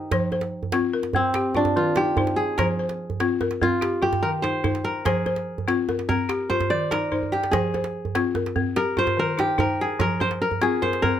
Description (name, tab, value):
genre	west african traditional, West African string and xylophone music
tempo	97 BPM (dotted quarters)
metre	12/8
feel	straight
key	F dorian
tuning	A4 = 439 Hz
part	kora	melody	0.0-11.2 s	C4 to D5	-24 LUFS	right 1 dB	none
part	balafon	arpeggios	0.0-11.2 s	Eb3 to C5	-25 LUFS	left 4 dB	none
part	djembe	percussion	0.1-11.1 s	none	-28 LUFS	right 4 dB	none
room	moderate small room reverb, RT60 0.5 s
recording	none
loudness	-21 LUFS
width	side -10 dB against mid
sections	0.0-11.2 A section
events	kora solo 0.0-11.2; drum fill 7.1-7.5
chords	0.1 F5; 1.4 Eb; 2.6 F5; 3.8 Eb; 5.1 F5; 6.3 Eb; 7.5 F5; 8.8 Eb; 10.0 F5